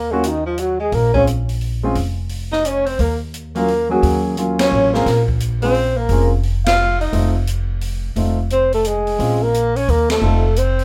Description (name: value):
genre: jazz, small-group swing and bop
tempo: 174 BPM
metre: 3/4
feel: swing 64% on 8ths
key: Bb minor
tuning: A4 = 440 Hz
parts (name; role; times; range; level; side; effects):
- breathy flugelhorn; melody; 0.0-10.8 s; Eb4 to F5; -21 LUFS; equal; none
- breathy tenor saxophone; second line; 0.0-10.8 s; Eb3 to F4; -24 LUFS; equal; none
- upright bass; bass; 0.0-10.8 s; F1 to Eb2; -22 LUFS; equal; none
- warm concert grand piano; accompaniment; 0.1-10.4 s; Gb3 to Ab4; -23 LUFS; equal; none
- open jazz drum kit; drums; 0.2-10.8 s; hi-hat, kick drum, ride cymbal, snare drum; -30 LUFS; equal; none
room: little or no reverb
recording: none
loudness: -18 LUFS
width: mono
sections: 0.0-10.8 A section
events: band accent 4.5, 6.6, 10.1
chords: 0.0 Ebm; 0.9 Bbm; 3.0 Ebm7; 5.1 Bbm7; 7.1 F7; 9.2 Bbm7; 9.9 Eb5; 10.2 F7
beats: 0.23 0.58 | 0.92 1.27 1.61 | 1.96 2.30 2.65 | 2.99 3.33 3.68 | 4.02 4.37 4.71 | 5.06 5.40 5.75 | 6.09 6.43 6.78 | 7.12 7.47 7.81 | 8.16 8.50 8.85 | 9.19 9.54 9.88 | 10.23 10.57